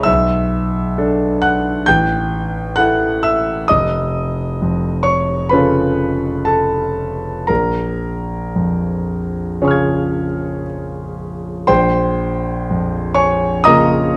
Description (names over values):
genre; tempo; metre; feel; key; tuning
classical, impressionist solo piano; 56-68 BPM; 4/4; rubato; Bb dorian; A4 = 441 Hz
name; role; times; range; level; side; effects
warm concert grand piano; solo; 0.0-14.2 s; F1 to Ab6; -17 LUFS; equal; none
room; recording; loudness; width
moderate concert hall reverb, RT60 1.9 s; close, detailed microphones; -17 LUFS; mono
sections
0.0-11.7 A section; 11.7-14.2 B section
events
none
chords
0.1 Bm7; 1.9 A5; 3.7 Faug7; 7.5 Bbm7; 11.7 Bbmadd9